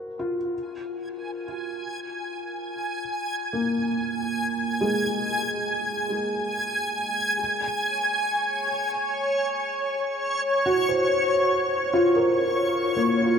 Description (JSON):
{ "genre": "ambient", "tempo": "free time", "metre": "none", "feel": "none", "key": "Gb lydian", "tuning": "A4 = 439 Hz", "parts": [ { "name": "felt-muted upright piano", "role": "arpeggios", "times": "0.0-13.4 s", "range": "Ab3 to C5", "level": "-26 LUFS", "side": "equal", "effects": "wide subtle chorus, diffuse ambient delay, shimmer reverb" }, { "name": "backwards swelling texture", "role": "texture", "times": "1.2-13.4 s", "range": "Db5 to Ab5", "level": "-25 LUFS", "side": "equal", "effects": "built-in reverb, ensemble chorus, shimmer reverb" } ], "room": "wet huge ambient reverb, RT60 7.2 s", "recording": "dreamy mix soaked in reverb", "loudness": "-23 LUFS", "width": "side -7 dB against mid", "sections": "0.0-7.4 A section; 7.4-13.4 A section", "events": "fade-in on felt piano 0.0-7.4", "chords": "0.0 Gbadd9; 0.5 Fmadd11; 7.4 Gbadd9" }